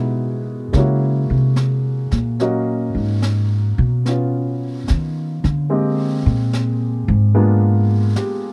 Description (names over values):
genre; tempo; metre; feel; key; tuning
jazz ballad; 73 BPM; 4/4; swing 67% on 8ths; unclear; A4 = 441 Hz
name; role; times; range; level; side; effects
warm upright piano; accompaniment; 0.0-8.5 s; F#3 to D#5; -24 LUFS; equal; none
upright bass; bass; 0.0-8.1 s; Ab2 to D#3; -19 LUFS; equal; none
brushed snare drum and snare drum; drums; 0.7-8.5 s; none; -33 LUFS; equal; none
room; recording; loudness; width
little or no reverb; dry, close 1970s-style studio recording; -18 LUFS; mono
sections
0.0-8.5 A section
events
upright bass solo 0.0-8.5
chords
0.0 Emaj9#11/B; 0.7 Gb9; 2.4 Bmaj9; 5.7 Abmaj9#11; 7.3 Bb7b9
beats
0.74 1.57 | 2.40 3.23 4.06 4.88 | 5.71 6.53 7.35 8.16